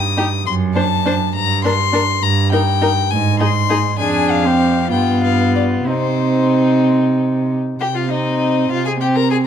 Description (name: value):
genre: quick classical-period movement for string quartet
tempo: 61-69 BPM (dotted quarters)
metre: 6/8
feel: rubato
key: C minor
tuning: A4 = 439 Hz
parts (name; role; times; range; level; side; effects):
- rich violin; melody; 0.0-9.4 s; C5 to Eb6; -20 LUFS; left 11 dB; none
- rich cello; bass; 0.0-9.5 s; F2 to C3; -18 LUFS; right 4 dB; none
- rich violin; second line; 0.2-9.4 s; Eb4 to C5; -22 LUFS; left 4 dB; none
- rich viola; accompaniment; 0.2-9.5 s; B3 to Eb4; -19 LUFS; right 1 dB; none
room: light reverb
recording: dark, warm production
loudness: -14 LUFS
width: side -8 dB against mid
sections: 0.0-7.8 A section; 7.8-9.5 B section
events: none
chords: 0.5 D7/F#; 1.3 Gm; 2.2 Eb/G; 3.1 Ab; 4.0 Ddim/F; 4.9 G7; 5.9 Cm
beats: | 0.46 1.34 | 2.23 3.10 | 3.99 4.91 | 5.87 6.84 | 7.80 8.70